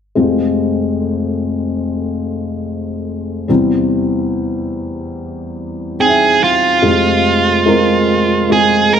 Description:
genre	pop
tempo	72 BPM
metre	4/4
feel	straight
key	F minor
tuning	A4 = 442 Hz
part	felt-muted upright piano	accompaniment	0.2-9.0 s	F1 to G5	-15 LUFS	left 2 dB	none
part	high-gain lead guitar	melody	6.0-9.0 s	F4 to Bb4	-12 LUFS	right 4 dB	distortion
room	moderate recital hall reverb, RT60 1.2 s, studio ambience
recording	faint mains hum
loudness	-12 LUFS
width	side -8 dB against mid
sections	0.2-6.8 A section; 6.8-9.0 B section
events	none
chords	0.2 Fmadd9; 3.5 C/E; 6.8 Fmadd9

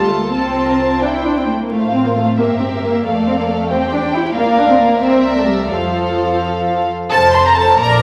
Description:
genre	quick classical-period movement for string orchestra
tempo	83-93 BPM (dotted quarters)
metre	6/8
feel	rubato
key	F major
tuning	A4 = 441 Hz
part	warm symphonic violin section	melody	0.0-8.0 s	E5 to C6	-19 LUFS	equal	none
part	warm symphonic violin section	second line	0.0-8.0 s	E4 to D5	-24 LUFS	equal	none
part	dark symphonic viola section	accompaniment	0.0-8.0 s	F3 to D5	-19 LUFS	equal	none
part	dark studio double bass section	bass	0.0-8.0 s	F1 to F2	-28 LUFS	equal	none
part	warm symphonic cello section	bass	0.0-8.0 s	F2 to E4	-24 LUFS	equal	none
room	wet recital hall reverb, RT60 1.4 s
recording	vinyl crackle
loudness	-15 LUFS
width	mono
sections	0.0-7.1 A section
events	none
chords	0.3 F/C; 1.0 C; 1.7 F/A; 2.4 Edim/G; 3.0 Dm/F; 3.7 C/E; 4.4 Bb/D; 5.0 C13; 5.7 F; 7.1 F5

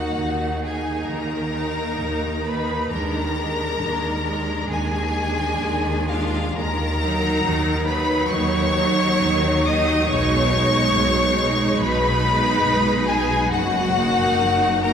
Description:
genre	classical, slow romantic movement for string orchestra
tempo	60-72 BPM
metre	4/4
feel	rubato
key	Eb minor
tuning	A4 = 439 Hz
part	rich chamber violin section	melody	0.0-14.9 s	F5 to Eb6	-24 LUFS	left 4 dB	none
part	clear chamber violin section	second line	0.0-14.9 s	F4 to Eb5	-25 LUFS	left 1 dB	none
part	bright chamber viola section	accompaniment	0.0-14.9 s	Gb3 to Eb4	-25 LUFS	right 2 dB	none
part	clear chamber double bass section	bass	0.0-14.9 s	Gb1 to Eb2	-26 LUFS	right 1 dB	none
part	rich chamber cello section	bass	0.0-14.9 s	Gb2 to Eb3	-27 LUFS	right 1 dB	none
room	wet church reverb, RT60 3.8 s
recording	recorded in a church or concert hall, vinyl crackle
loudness	-18 LUFS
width	side -7 dB against mid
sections	0.0-14.9 A section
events	none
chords	0.0 Ebm; 2.9 Bb7/Eb; 6.6 Ebm; 10.1 B6; 13.5 Ebm/Gb

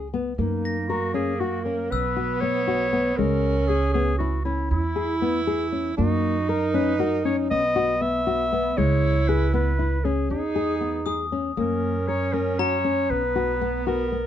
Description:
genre	contemporary instrumental, chamber music in an uneven meter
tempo	236 BPM (eighths)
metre	11/8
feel	straight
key	F# mixolydian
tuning	A4 = 438 Hz
part	breathy alto saxophone	second line	0.0-14.3 s	A#3 to E4	-28 LUFS	right 5 dB	none
part	nylon-string guitar	arpeggios	0.0-14.3 s	G#3 to A#4	-27 LUFS	left 7 dB	none
part	upright bass	bass	0.0-14.3 s	B1 to F#2	-27 LUFS	right 2 dB	none
part	mellow clarinet	melody	0.4-14.3 s	D#4 to E5	-26 LUFS	left 1 dB	none
part	glockenspiel with brass mallets	texture	0.7-3.3, 11.1-13.3 s	A#5 to A#6	-32 LUFS	left 5 dB	none
room	light reverb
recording	dark, warm production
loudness	-21 LUFS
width	side -10 dB against mid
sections	0.4-14.3 A section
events	none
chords	0.4 F#6; 1.9 Bsus2; 3.2 C#m7; 4.7 E; 6.0 F#6; 7.5 B5; 8.8 C#m7; 10.3 E; 11.6 F#6; 13.1 B5

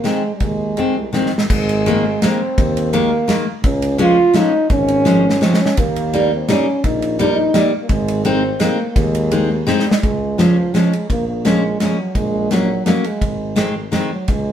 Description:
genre	alpine folk, alpine dance band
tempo	169 BPM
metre	3/4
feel	straight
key	Ab major, Db major from 10.0 s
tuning	A4 = 442 Hz
part	warm euphonium	melody	0.0-14.5 s	F3 to F4	-18 LUFS	right 1 dB	none
part	fingerpicked steel-string acoustic guitar	accompaniment	0.0-14.1 s	Eb3 to Eb4	-17 LUFS	left 1 dB	none
part	mellow tuba	bass	0.0-14.5 s	Ab1 to Eb2	-23 LUFS	left 1 dB	none
part	natural country drum kit	drums	0.1-14.4 s	crash cymbal, kick drum, ride cymbal, snare drum	-20 LUFS	equal	none
room	moderate studio reverb, RT60 0.9 s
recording	band playing live in one room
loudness	-14 LUFS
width	side -9 dB against mid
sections	0.0-1.5 A section; 1.5-10.0 A section; 10.0-14.5 B section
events	drum fill 1.1-1.5, 5.1-5.8, 9.7-10.0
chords	0.0 Ab; 1.5 Absus2; 3.6 Db; 5.8 Eb; 7.9 Ab; 10.0 Db; 11.1 Bbm7; 12.2 Gb/Bb; 13.2 Ab

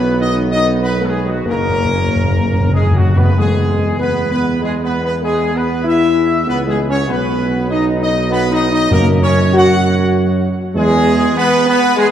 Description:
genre	classical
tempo	97 BPM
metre	3/4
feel	straight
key	unclear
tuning	A4 = 441 Hz
part	clear trumpet section	melody	0.0-12.1 s	F#4 to F#5	-19 LUFS	left 1 dB	none
part	clear trombone section	sustained chords	0.0-12.1 s	C#3 to F#4	-20 LUFS	right 2 dB	none
part	mellow French horn section	sustained chords	0.0-12.1 s	F#3 to F#4	-19 LUFS	left 3 dB	none
part	warm tuba	bass	0.0-11.3 s	F#1 to F#2	-18 LUFS	right 2 dB	none
part	timpani	percussion	1.5-3.3, 8.9-9.8 s	F#2	-16 LUFS	left 1 dB	none
room	wet church reverb, RT60 3.4 s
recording	dark, warm production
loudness	-12 LUFS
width	side -10 dB against mid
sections	0.0-3.4 A section; 3.4-12.1 A section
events	timpani fill 1.5-3.4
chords	0.0 B; 1.5 F#; 3.4 E; 7.1 B; 8.9 F#; 10.8 E

